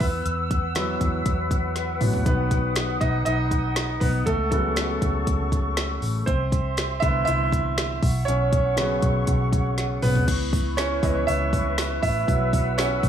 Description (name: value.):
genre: piano-driven pop.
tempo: 120 BPM.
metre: 4/4.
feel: straight.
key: unclear.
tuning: A4 = 442 Hz.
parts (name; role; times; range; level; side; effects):
clear baby grand piano; accompaniment; 0.0-13.1 s; C#3 to E5; -26 LUFS; right 1 dB; none.
large flute ensemble; sustained chords; 0.0-13.1 s; E4 to E6; -30 LUFS; left 1 dB; none.
vintage muted fingered electric bass; bass; 0.0-13.1 s; A1 to E2; -26 LUFS; equal; none.
deep house drum kit; drums; 0.0-13.1 s; crash cymbal, hi-hat, kick drum, snare drum, toms; -26 LUFS; equal; none.
room: light reverb.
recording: small room ambience.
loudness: -21 LUFS.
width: side -9 dB against mid.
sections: 0.0-10.3 A section; 10.3-13.1 B section.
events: grand piano solo 0.0-10.3, 10.3-13.1; drum fill 1.8-2.3, 9.8-10.3.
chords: 0.0 Esus2; 2.3 B; 4.3 A6/C#; 6.3 Cmaj7; 8.0 Bsus2; 10.3 C#m7; 12.3 Bsus4.